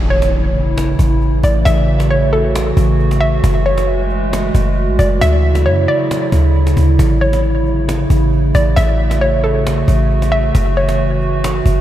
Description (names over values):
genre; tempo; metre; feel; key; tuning
hip hop, atmospheric cloud-rap; 135 BPM; 4/4; half-time; A major; A4 = 438 Hz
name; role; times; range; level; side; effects
warbly tape-like pad; sustained chords; 0.0-11.8 s; C#3 to F#4; -18 LUFS; right 1 dB; chorus, built-in reverb
warm 808-style bass; bass; 0.0-11.8 s; F#1 to F#2; -14 LUFS; equal; none
impact; sound effects; 0.0-1.7 s; none; -27 LUFS; equal; none
hollow square pluck; melody; 0.1-11.8 s; A4 to E5; -19 LUFS; equal; chorus, tape echo
cajon; drums; 0.1-11.8 s; none; -24 LUFS; equal; none
room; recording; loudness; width
moderate cathedral reverb, RT60 5.9 s; dreamy mix soaked in reverb; -12 LUFS; side -12 dB against mid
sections
0.0-11.8 A section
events
impact 0.0-1.7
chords
0.0 A; 3.4 F#m9; 5.2 Dmaj9; 7.0 A; 10.5 F#m7